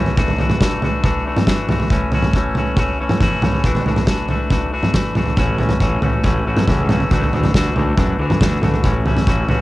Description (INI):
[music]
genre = indie rock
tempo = 139 BPM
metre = 4/4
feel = straight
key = unclear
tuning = A4 = 440 Hz
[part]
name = twangy electric guitar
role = riff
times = 0.0-9.6 s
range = E3 to F#4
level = -21 LUFS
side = left 2 dB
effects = spring reverb
[part]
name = loose indie drum kit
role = drums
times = 0.1-9.6 s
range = kick drum, snare drum, toms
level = -16 LUFS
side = equal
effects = cassette tape
[part]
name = fuzz picked electric bass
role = bass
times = 5.4-9.6 s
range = A1 to D3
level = -21 LUFS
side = equal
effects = overdrive
[sound]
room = light reverb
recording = home recording on cassette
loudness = -15 LUFS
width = side -18 dB against mid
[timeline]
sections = 0.0-9.6 A section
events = none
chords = 0.2 Dadd9; 1.9 A6; 3.6 Dadd9; 5.4 A6; 7.1 Dadd9; 8.8 A6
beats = | 0.18 0.61 1.04 1.48 | 1.91 2.35 2.78 3.21 | 3.65 4.08 4.51 4.94 | 5.38 5.81 6.24 6.67 | 7.11 7.54 7.97 8.40 | 8.84 9.27